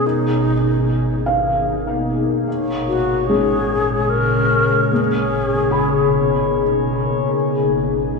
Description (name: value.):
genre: ambient.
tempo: 74 BPM.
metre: 3/4.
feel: straight.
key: G# dorian.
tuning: A4 = 440 Hz.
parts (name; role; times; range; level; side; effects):
alto flute; melody; 0.0-6.5 s; D#4 to A#4; -21 LUFS; left 2 dB; tape echo.
glassy FM pad; sustained chords; 0.0-8.2 s; A#2 to G#4; -18 LUFS; left 2 dB; ensemble chorus, built-in reverb.
felt-muted upright piano; arpeggios; 0.0-7.4 s; G#3 to B5; -24 LUFS; equal; tape echo.
warm sub bass; bass; 0.1-8.2 s; G#1; -31 LUFS; equal; none.
glass harmonica; texture; 2.5-8.2 s; G#4 to C#6; -26 LUFS; left 4 dB; none.
room: wet lush hall reverb, RT60 2.7 s.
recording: worn, warbling old tape, cassette tape, warbly pitch drift, studio ambience.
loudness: -16 LUFS.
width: side -3 dB against mid.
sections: 0.0-7.3 A section.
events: none.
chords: 0.0 G#m69; 2.5 A#m7/G#; 4.9 G#madd9; 7.3 C#7/G#.